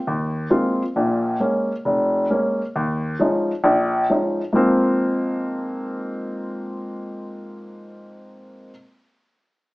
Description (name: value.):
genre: solo jazz.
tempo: 134 BPM.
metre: 4/4.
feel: swing 65% on 8ths.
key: Ab major.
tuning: A4 = 439 Hz.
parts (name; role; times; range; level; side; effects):
warm baby grand piano; solo; 0.1-8.7 s; F1 to F4; -20 LUFS; equal; none.
room: wet studio reverb, RT60 0.8 s.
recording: band playing live in one room, AM radio sound.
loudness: -19 LUFS.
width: side -21 dB against mid.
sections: 1.0-4.5 A section; 4.5-8.1 B section.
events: none.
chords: 0.0 Ab69; 1.0 Bbm7; 2.8 Eb9sus4; 4.5 Ab69.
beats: 0.07 0.52 | 0.96 1.41 1.86 2.30 | 2.75 3.20 3.65 4.09 | 4.54 4.99 5.44 5.88 | 6.33 6.78 7.23 7.67.